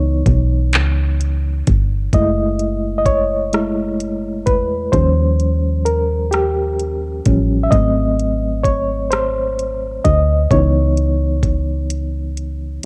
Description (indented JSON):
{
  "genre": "slow six-eight R&B",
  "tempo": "43 BPM (dotted quarters)",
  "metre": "6/8",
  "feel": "straight",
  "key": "C# minor",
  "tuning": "A4 = 440 Hz",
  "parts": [
    { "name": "reed electric piano", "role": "accompaniment", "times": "0.0-12.9 s", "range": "E3 to E5", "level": "-21 LUFS", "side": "equal", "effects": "fast tremolo, cassette tape" },
    { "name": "solid FM bass", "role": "bass", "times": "0.0-12.8 s", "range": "F#1 to E2", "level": "-20 LUFS", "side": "equal", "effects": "none" },
    { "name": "smooth R&B drum kit", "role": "drums", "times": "0.3-12.6 s", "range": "handclaps, hi-hat, kick drum, rim click", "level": "-20 LUFS", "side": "equal", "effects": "cassette tape" }
  ],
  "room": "digital ambience",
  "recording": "home recording on cassette",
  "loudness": "-17 LUFS",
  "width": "mono",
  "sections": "0.0-2.1 A section; 2.1-12.9 B section",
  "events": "reed electric piano solo 0.0-2.1, 2.1-12.9; drum fill 11.9-12.9",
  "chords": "0.0 C#m9; 2.1 F#m9; 4.9 D#9; 7.7 G#7b9; 10.5 C#m9"
}